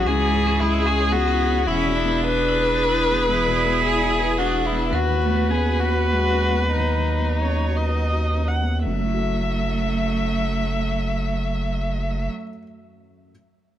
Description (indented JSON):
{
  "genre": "neoclassical piano and strings",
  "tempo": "80-113 BPM",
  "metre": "3/4",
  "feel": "rubato",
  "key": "F# minor",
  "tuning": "A4 = 440 Hz",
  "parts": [
    { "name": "rich violin", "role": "melody", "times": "0.0-12.3 s", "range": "D#4 to E5", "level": "-24 LUFS", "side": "left 4 dB", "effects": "slapback echo" },
    { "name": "clear cello", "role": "second line", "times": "0.0-12.3 s", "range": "E3 to E4", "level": "-27 LUFS", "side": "right 4 dB", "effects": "none" },
    { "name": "felt-muted upright piano", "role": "accompaniment", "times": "0.0-13.3 s", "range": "C#2 to E5", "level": "-29 LUFS", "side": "left 3 dB", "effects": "none" },
    { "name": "warm viola", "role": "accompaniment", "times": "0.0-12.3 s", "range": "A3 to F#5", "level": "-27 LUFS", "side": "right 3 dB", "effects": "none" },
    { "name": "saturated sub bass", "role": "bass", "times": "0.0-12.3 s", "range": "E1 to D#2", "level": "-24 LUFS", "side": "equal", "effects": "none" },
    { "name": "marimba with hard mallets", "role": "arpeggios", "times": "0.1-8.8 s", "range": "C#4 to B5", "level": "-32 LUFS", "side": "right 1 dB", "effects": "slapback echo" }
  ],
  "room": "light reverb",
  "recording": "none",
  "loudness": "-19 LUFS",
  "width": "side -11 dB against mid",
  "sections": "0.0-8.9 A section; 8.9-13.3 B section",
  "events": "slowing down 4.1-8.9",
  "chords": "0.1 C#m; 1.7 E7; 4.9 Badd9/D#; 8.9 F#m7",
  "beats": "| 0.06 0.59 1.13 | 1.67 2.21 2.75 | 3.29 3.83 4.37 | 4.92 5.50 6.11 | 6.74 7.41 8.12 | 8.86 9.60 10.34 | 11.07 11.81 12.56"
}